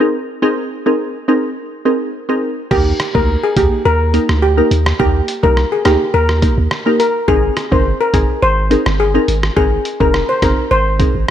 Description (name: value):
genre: dancehall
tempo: 105 BPM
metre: 4/4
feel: straight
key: Eb major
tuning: A4 = 440 Hz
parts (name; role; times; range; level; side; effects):
- glassy wavetable pluck; accompaniment; 0.0-11.2 s; Bb3 to Bb4; -17 LUFS; equal; chorus, sidechain pumping, low-pass filter
- steel pan; melody; 2.7-11.1 s; G4 to C5; -16 LUFS; left 1 dB; digital delay
- punchy sub bass; bass; 2.7-11.3 s; F1 to Eb2; -16 LUFS; right 1 dB; none
- trip hop sampler-style drum kit; drums; 2.7-11.3 s; crash cymbal, hi-hat, kick drum, rim click; -18 LUFS; equal; none
room: little or no reverb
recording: none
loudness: -12 LUFS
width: side -10 dB against mid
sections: 0.0-2.7 A section; 2.7-11.3 B section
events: none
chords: 0.0 Abadd9; 2.7 Eb; 7.3 Abadd9